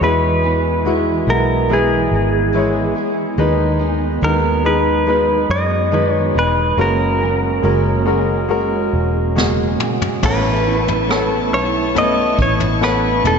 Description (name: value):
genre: pop ballad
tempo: 70 BPM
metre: 4/4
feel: straight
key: unclear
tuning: A4 = 435 Hz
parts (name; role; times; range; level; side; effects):
- direct-recorded clean electric guitar; melody; 0.0-13.4 s; G#4 to D#5; -19 LUFS; equal; spring reverb, ping-pong delay
- bright concert grand piano; accompaniment; 0.0-13.4 s; A2 to C#5; -19 LUFS; left 2 dB; none
- picked steel-string acoustic guitar; arpeggios; 0.0-13.4 s; F#2 to B4; -23 LUFS; right 6 dB; ensemble chorus
- vintage muted fingered electric bass; bass; 0.0-13.4 s; E1 to F#2; -20 LUFS; equal; none
- vintage brush drum kit; drums; 9.4-13.4 s; crash cymbal, kick drum, rim click, snare drum, toms; -22 LUFS; equal; none
- rich studio string section; sustained chords; 10.2-13.4 s; B3 to C#6; -24 LUFS; left 1 dB; none
room: wet cathedral reverb, RT60 4.7 s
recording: dreamy mix soaked in reverb, nothing above 7.8 kHz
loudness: -14 LUFS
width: side -6 dB against mid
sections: 0.0-10.2 A section; 10.2-13.4 B section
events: drum fill 9.4-10.2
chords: 0.0 E; 3.4 B6/D#; 6.8 F#add9; 10.2 Aadd9